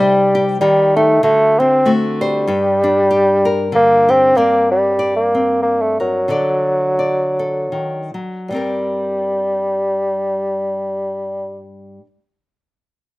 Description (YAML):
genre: acoustic folk duo or small band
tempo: 74-96 BPM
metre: 3/4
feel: swing 56% on 8ths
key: G minor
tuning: A4 = 440 Hz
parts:
  - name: mellow bassoon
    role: melody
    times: 0.0-11.7 s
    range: F#3 to C4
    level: -14 LUFS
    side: equal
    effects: slapback echo
  - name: nylon-string guitar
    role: accompaniment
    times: 0.0-12.1 s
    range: G2 to D5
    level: -21 LUFS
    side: left 2 dB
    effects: slapback echo
room: little or no reverb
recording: recorded outdoors, with no room sound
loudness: -13 LUFS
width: side -20 dB against mid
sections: 0.0-4.4 A section; 4.4-8.5 B section; 8.5-13.2 C section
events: slowing down 4.4-8.5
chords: 0.0 Cm; 0.6 Eb; 1.2 D7; 2.5 Gm; 6.3 D; 8.5 Gm